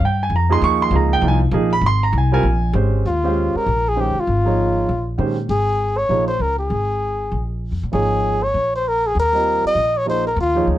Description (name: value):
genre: modal jazz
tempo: 197 BPM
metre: 4/4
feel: swing 60% on 8ths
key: Eb mixolydian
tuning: A4 = 437 Hz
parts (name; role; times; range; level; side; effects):
- warm grand piano; accompaniment; 0.0-10.8 s; Eb3 to Db6; -20 LUFS; right 4 dB; none
- upright bass; bass; 0.0-10.8 s; Ab1 to Bb2; -20 LUFS; left 1 dB; none
- trumpet with bucket mute; melody; 3.1-10.7 s; F4 to Eb5; -19 LUFS; left 1 dB; none
room: light reverb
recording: dark, warm production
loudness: -16 LUFS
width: side -13 dB against mid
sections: 0.0-3.0 A section; 3.0-10.8 B section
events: none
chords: 0.0 Eb13sus4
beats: 0.01 0.32 | 0.62 0.93 1.23 1.53 | 1.83 2.14 2.44 2.75 | 3.05 3.35 3.66 3.96 | 4.27 4.57 4.88 5.18 | 5.49 5.79 6.10 6.40 | 6.71 7.01 7.32 7.62 | 7.93 8.23 8.54 8.84 | 9.15 9.46 9.76 10.07 | 10.37 10.68